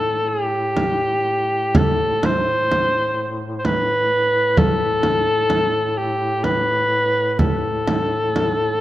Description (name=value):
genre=caucasian folk, Caucasian lament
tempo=60-65 BPM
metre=3/4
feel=rubato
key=A minor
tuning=A4 = 439 Hz
part: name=dark soprano saxophone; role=melody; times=0.0-8.8 s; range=G4 to C5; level=-18 LUFS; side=equal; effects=none
part: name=warm duduk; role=drone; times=0.0-8.8 s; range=A2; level=-28 LUFS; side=left 1 dB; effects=none
part: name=frame drum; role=percussion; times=0.8-8.6 s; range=none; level=-21 LUFS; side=right 1 dB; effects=none
room=moderate scoring stage reverb, RT60 1.9 s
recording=none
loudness=-17 LUFS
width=side -14 dB against mid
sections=0.0-8.8 A section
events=none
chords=none